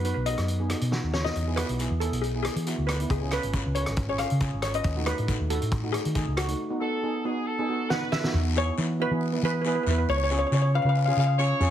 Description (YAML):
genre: calypso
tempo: 137 BPM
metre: 4/4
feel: straight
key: E major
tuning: A4 = 439 Hz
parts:
  - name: steel pan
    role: melody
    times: 0.0-11.3 s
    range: F#4 to F#5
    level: -30 LUFS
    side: left 1 dB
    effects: none
  - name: steel pan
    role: accompaniment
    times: 0.0-11.7 s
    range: A3 to B4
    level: -31 LUFS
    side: right 2 dB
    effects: none
  - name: hollow-body short-scale fingered electric bass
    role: bass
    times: 0.0-11.7 s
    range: G#1 to E3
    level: -27 LUFS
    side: equal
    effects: none
  - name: loose indie drum kit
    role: drums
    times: 0.0-8.3 s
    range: hi-hat, kick drum, rim click, snare drum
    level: -31 LUFS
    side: equal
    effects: none
  - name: guiro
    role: percussion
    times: 1.4-11.7 s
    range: none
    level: -39 LUFS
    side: left 6 dB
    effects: none
  - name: warm horn section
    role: second line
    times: 6.8-8.3, 11.4-11.7 s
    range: G#4 to C#5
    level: -30 LUFS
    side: equal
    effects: none
room: light reverb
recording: heavily compressed radio sound, multiband compression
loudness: -24 LUFS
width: side -10 dB against mid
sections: 0.0-8.3 A section; 8.3-11.7 B section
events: drum fill 0.9-1.4, 7.9-8.3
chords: 0.0 B; 1.4 E; 3.1 C#7; 4.9 D#m7b5; 6.6 B; 8.3 E; 10.1 C#